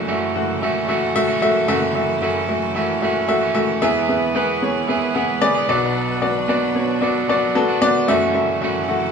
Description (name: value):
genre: pop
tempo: 112 BPM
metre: 4/4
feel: straight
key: F# minor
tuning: A4 = 438 Hz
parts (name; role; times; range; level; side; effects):
- warm upright piano; accompaniment; 0.0-9.1 s; F#1 to F#5; -18 LUFS; left 1 dB; none
- bright studio string section; sustained chords; 0.0-9.1 s; F#3 to B4; -30 LUFS; equal; none
- electric guitar at the edge of break-up; riff; 0.0-9.1 s; F#2 to G#4; -23 LUFS; right 6 dB; none
room: wet large studio reverb, RT60 0.9 s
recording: band playing live in one room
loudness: -17 LUFS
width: side -6 dB against mid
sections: 0.0-9.1 A section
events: none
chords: 0.0 F#m7; 3.8 E; 5.7 Bm; 8.1 F#m7